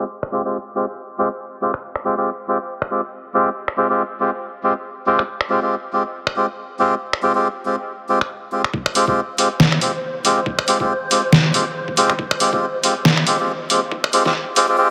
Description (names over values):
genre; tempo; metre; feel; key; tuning
deep dubstep; 139 BPM; 4/4; swing 57% on 16ths, half-time; F minor; A4 = 440 Hz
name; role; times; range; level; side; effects
melodica; stabs; 0.0-14.9 s; Ab3 to G4; -21 LUFS; equal; dub echo
trip hop sampler-style drum kit; drums; 0.2-14.7 s; finger snaps, hi-hat, snare drum; -20 LUFS; equal; low-pass filter on snare, low-pass filter on hats
electronic kick drum; drums; 8.7-14.3 s; none; -29 LUFS; equal; high-pass filter on kick
wind-like tuned noise texture; texture; 9.3-14.8 s; C5; -31 LUFS; equal; none
room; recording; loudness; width
moderate huge ambient reverb, RT60 4.8 s; high-pass filter, low-pass filter; -19 LUFS; mono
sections
0.0-8.7 A section; 8.7-14.9 B section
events
filter sweep on melodica 0.0-8.7; filter sweep 0.0-8.7; build-up 8.7-14.9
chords
0.0 Fmadd9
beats
| 0.10 0.54 0.97 1.40 | 1.83 2.26 2.69 3.12 | 3.56 3.99 4.42 4.85 | 5.28 5.71 6.15 6.58 | 7.01 7.44 7.87 8.30 | 8.74 9.17 9.60 10.03 | 10.46 10.89 11.33 11.76 | 12.19 12.62 13.05 13.48 | 13.92 14.35 14.78